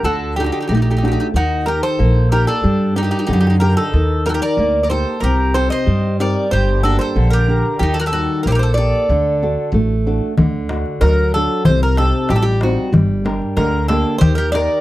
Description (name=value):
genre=greek folk, Greek bouzouki band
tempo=93 BPM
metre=2/4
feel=straight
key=D phrygian dominant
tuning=A4 = 440 Hz
part: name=Greek bouzouki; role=melody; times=0.0-14.8 s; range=F#4 to Eb5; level=-20 LUFS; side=right 1 dB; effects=none
part: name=bowl-back mandolin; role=second line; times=0.0-9.7, 14.2-14.8 s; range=D4 to C5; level=-26 LUFS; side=left 1 dB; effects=none
part: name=upright bass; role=bass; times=0.0-14.7 s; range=G1 to G2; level=-17 LUFS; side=equal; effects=none
part: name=flamenco guitar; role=accompaniment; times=0.1-14.8 s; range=C3 to Bb4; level=-20 LUFS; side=equal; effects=none
part: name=darbuka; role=percussion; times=10.4-14.7 s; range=none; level=-18 LUFS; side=left 1 dB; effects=none
room=little or no reverb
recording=dry, close 1970s-style studio recording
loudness=-14 LUFS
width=side -16 dB against mid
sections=0.0-10.4 A section; 10.4-14.8 B section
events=none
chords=0.0 D; 1.3 Eb; 2.6 Gm; 3.9 Eb; 5.2 Cm; 6.5 Gm; 7.8 Eb; 9.1 D; 11.7 Cm; 12.9 Gm; 14.2 Eb